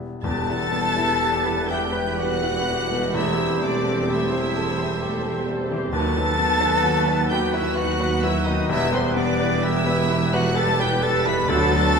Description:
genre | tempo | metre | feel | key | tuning
classical, romantic movement for piano and orchestra | 64 BPM | 3/4 | uneven beats, rubato | E minor | A4 = 440 Hz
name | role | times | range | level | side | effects
clear baby grand piano | melody | 0.0-12.0 s | E1 to B5 | -26 LUFS | left 4 dB | none
rich symphonic double bass section | bass | 0.0-12.0 s | E1 to D#2 | -30 LUFS | right 2 dB | none
warm symphonic cello section | bass | 0.0-12.0 s | D2 to E2 | -31 LUFS | right 4 dB | none
rich symphonic violin section | melody | 0.2-12.0 s | C6 to B6 | -29 LUFS | left 2 dB | none
rich chamber violin section | second line | 0.2-12.0 s | C5 to B5 | -30 LUFS | left 1 dB | none
silver concert flute | second line | 0.2-12.0 s | C5 to B5 | -30 LUFS | left 1 dB | none
warm clarinet | second line | 0.2-12.0 s | F#4 to G4 | -33 LUFS | right 1 dB | none
rich symphonic viola section | accompaniment | 0.2-12.0 s | G3 to A4 | -31 LUFS | right 2 dB | none
mellow trombone section | sustained chords | 0.2-11.8 s | D3 to G3 | -32 LUFS | right 2 dB | none
warm French horn section | sustained chords | 0.2-11.8 s | B3 to B4 | -32 LUFS | left 2 dB | none
bright trumpet section | stabs | 0.2-12.0 s | C4 to B4 | -29 LUFS | right 2 dB | none
warm tuba | bass | 0.2-12.0 s | E1 to D#2 | -33 LUFS | right 4 dB | none
timpani | percussion | 0.2-1.7 s | E2 | -34 LUFS | equal | none
warm oboe | second line | 0.3-12.0 s | B4 to C5 | -34 LUFS | right 3 dB | none
room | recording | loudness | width
wet recital hall reverb, RT60 1.7 s | minimal, uncompressed stereo recording | -19 LUFS | side -5 dB against mid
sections
0.2-12.0 A section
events
none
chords
0.2 Em; 3.2 C6/E; 5.9 B/D#; 8.7 Em; 11.5 Bm/D

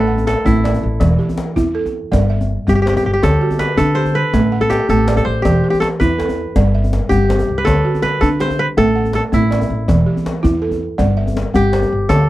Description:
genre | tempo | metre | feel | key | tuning
west african traditional, West African string and xylophone music | 108 BPM (dotted quarters) | 12/8 | straight | G major | A4 = 440 Hz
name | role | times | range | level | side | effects
kora | melody | 0.0-12.3 s | E4 to C5 | -18 LUFS | left 1 dB | none
balafon | arpeggios | 0.0-12.3 s | D3 to F#5 | -18 LUFS | right 2 dB | none
upright bass | bass | 0.0-12.3 s | E1 to D3 | -18 LUFS | equal | none
djembe | percussion | 0.2-12.2 s | none | -21 LUFS | left 2 dB | none
room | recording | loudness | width
light reverb | dry, close 1970s-style studio recording | -13 LUFS | side -15 dB against mid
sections
0.0-12.3 A section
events
none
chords
0.0 A5; 1.0 Em; 2.1 G5; 3.2 D; 4.3 A5; 5.4 Em; 6.6 G5; 7.7 D; 8.8 A5; 9.9 Em; 11.0 G5

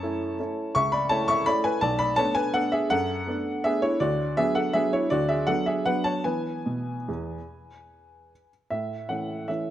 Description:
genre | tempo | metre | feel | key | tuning
classical, piano waltz | 140-174 BPM | 3/4 | rubato | unclear | A4 = 440 Hz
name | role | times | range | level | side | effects
warm upright piano | solo | 0.0-9.7 s | B1 to C#6 | -23 LUFS | equal | none
room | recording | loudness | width
moderate recital hall reverb, RT60 1.5 s | close, detailed microphones | -23 LUFS | side -12 dB against mid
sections
0.0-8.7 A section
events
none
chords
0.0 F#m7; 1.8 Bm7; 4.0 Bm/D; 6.2 E; 8.7 A

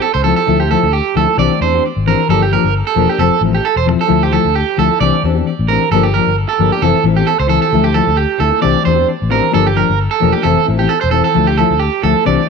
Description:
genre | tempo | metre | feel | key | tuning
highlife | 132 BPM | 4/4 | swing 54% on 16ths | unclear | A4 = 440 Hz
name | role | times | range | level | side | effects
fingerpicked steel-string acoustic guitar | accompaniment | 0.0-12.4 s | E3 to A4 | -16 LUFS | left 12 dB | none
electric guitar at the edge of break-up | arpeggios | 0.0-12.5 s | G4 to D5 | -14 LUFS | right 10 dB | tape echo
fingered electric bass | bass | 0.1-12.4 s | E1 to E2 | -16 LUFS | left 2 dB | none
room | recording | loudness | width
light reverb, studio ambience | 1960s-style stereo with parts hard left and right | -11 LUFS | side -5 dB against mid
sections
0.0-12.5 A section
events
none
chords
0.5 Dmadd9; 1.4 Cadd9; 2.3 Gm7; 3.2 Fmaj7; 4.1 Dmadd9; 5.0 Cadd9; 5.9 Gm7; 6.8 Fmaj7 (rootless); 7.7 Dmadd9; 8.6 Cadd9; 9.5 Gm7; 10.4 Fmaj7 (rootless); 11.4 Dmadd9

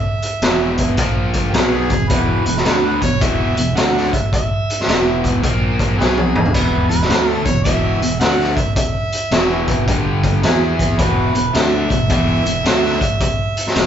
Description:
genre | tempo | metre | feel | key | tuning
blues rock power trio and southern rock | 108 BPM | 4/4 | swing 65% on 8ths | unclear | A4 = 439 Hz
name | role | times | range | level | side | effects
mellow harmonica | melody | 0.0-13.9 s | G4 to F#5 | -22 LUFS | right 2 dB | overdrive
raw garage drum kit | drums | 0.2-13.9 s | hi-hat, kick drum, snare drum, splash cymbal, toms | -17 LUFS | equal | none
distorted electric guitar | riff | 0.4-13.9 s | E2 to E4 | -20 LUFS | left 1 dB | distortion
fuzz fingered electric bass | bass | 0.4-13.9 s | E1 to E2 | -23 LUFS | equal | overdrive
room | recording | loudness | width
light reverb | band playing live in one room, nothing above 7.7 kHz | -14 LUFS | side -9 dB against mid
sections
0.0-13.9 A section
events
drum fill 6.0-6.5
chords
0.0 E5; 1.0 A#5; 1.5 E5; 5.4 A#5; 6.0 E5; 9.9 G5; 10.4 E5

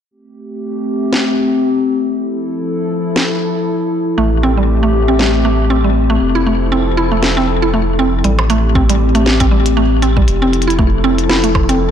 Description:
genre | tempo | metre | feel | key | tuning
IDM | 118 BPM | 4/4 | swing 56% on 16ths | A minor | A4 = 440 Hz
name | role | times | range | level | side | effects
warbly tape-like pad | sustained chords | 0.1-11.9 s | F3 to A4 | -16 LUFS | left 2 dB | chorus, built-in reverb
glitchy drum kit | drums | 1.1-11.8 s | hi-hat, percussion blips, snare drum | -19 LUFS | equal | ping-pong delay
mallet-like synth pluck | arpeggios | 4.2-11.8 s | G3 to E4 | -16 LUFS | right 3 dB | chorus, cassette tape, ping-pong delay
warm sub bass | bass | 4.2-11.9 s | F1 to A1 | -15 LUFS | equal | transformer saturation
electronic kick drum | drums | 8.8-11.7 s | none | -15 LUFS | equal | none
room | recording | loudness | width
moderate plate reverb, RT60 1.8 s | blown-out, overdriven recording, overdrive | -12 LUFS | side -9 dB against mid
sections
0.1-8.2 A section; 8.2-11.9 B section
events
none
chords
0.1 Am7; 2.1 Fmaj7; 4.2 Am7; 6.2 Fmaj7; 8.2 Am7; 10.3 Fmaj7

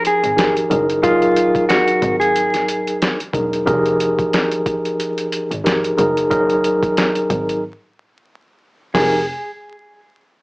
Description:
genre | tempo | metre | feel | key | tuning
hip hop, boom-bap hip-hop | 91 BPM | 4/4 | swing 56% on 16ths | F phrygian | A4 = 439 Hz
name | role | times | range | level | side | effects
mellow electric guitar | melody | 0.0-3.0, 8.9-9.3 s | F4 to Ab4 | -17 LUFS | equal | spring reverb, digital delay
mellow tine electric piano | accompaniment | 0.0-9.2 s | F3 to Bb4 | -17 LUFS | equal | medium stereo tremolo, cassette tape
boom bap sampler-style drum kit | drums | 0.0-9.1 s | hi-hat, kick drum, snare drum | -21 LUFS | equal | none
rich double bass | bass | 0.2-9.3 s | E1 to Ab1 | -26 LUFS | equal | none
room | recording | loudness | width
light reverb | worn, warbling old tape, cassette tape, vinyl crackle, warbly pitch drift, small speaker sound | -15 LUFS | side -30 dB against mid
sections
0.0-8.9 A section; 8.9-10.4 B section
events
break 7.6-8.9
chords
0.0 Fm11; 0.7 Gb69; 3.7 Fm11; 6.0 Gb69; 8.9 Fm11

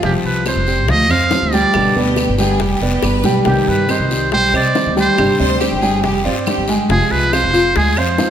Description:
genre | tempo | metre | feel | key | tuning
latin, Cuban son and guajira | 140 BPM | 4/4 | straight | unclear | A4 = 440 Hz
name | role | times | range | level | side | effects
trumpet with metal mute | melody | 0.0-8.3 s | G4 to F5 | -17 LUFS | right 2 dB | slapback echo
nylon-string guitar | accompaniment | 0.0-8.3 s | B2 to G4 | -21 LUFS | left 3 dB | none
clear concert grand piano | arpeggios | 0.0-8.3 s | F3 to Ab5 | -18 LUFS | right 2 dB | none
upright bass | bass | 0.0-8.2 s | F1 to C3 | -20 LUFS | equal | none
bongos | percussion | 0.0-8.3 s | none | -26 LUFS | left 5 dB | none
guiro | percussion | 0.0-8.3 s | none | -28 LUFS | left 5 dB | none
claves | percussion | 0.5-8.2 s | none | -31 LUFS | right 4 dB | none
clear studio violin section | second line | 2.0-6.8 s | F4 to C5 | -23 LUFS | right 1 dB | none
room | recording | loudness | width
wet scoring stage reverb, RT60 1.5 s | none | -13 LUFS | side -9 dB against mid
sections
0.0-8.3 A section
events
drum fill 3.0-3.5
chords
0.0 Fsus2; 1.7 G; 3.5 Cm; 5.2 Fm

